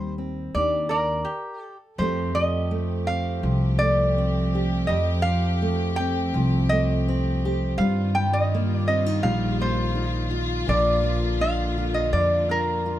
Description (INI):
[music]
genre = acoustic folk duo or small band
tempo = 83 BPM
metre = 4/4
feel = straight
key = F mixolydian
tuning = A4 = 440 Hz
[part]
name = lap resonator guitar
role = melody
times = 0.0-13.0 s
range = G4 to G5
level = -25 LUFS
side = equal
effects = none
[part]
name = fingerpicked steel-string acoustic guitar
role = accompaniment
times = 0.0-13.0 s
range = F2 to Bb4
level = -28 LUFS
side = equal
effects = none
[part]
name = upright bass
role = bass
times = 0.0-13.0 s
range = Bb1 to G2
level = -25 LUFS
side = equal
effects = none
[part]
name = warm chamber string section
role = sustained chords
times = 2.0-13.0 s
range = D3 to G4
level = -32 LUFS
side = left 1 dB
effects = none
[sound]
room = little or no reverb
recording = close, detailed microphones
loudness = -21 LUFS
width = side -13 dB against mid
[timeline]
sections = 0.0-2.0 A section; 2.0-13.0 B section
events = stop 1.3-2.0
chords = 0.0 Cm7/Eb; 0.5 Ebmaj7; 2.0 Fadd9; 7.8 Ebadd9/G; 10.7 Bb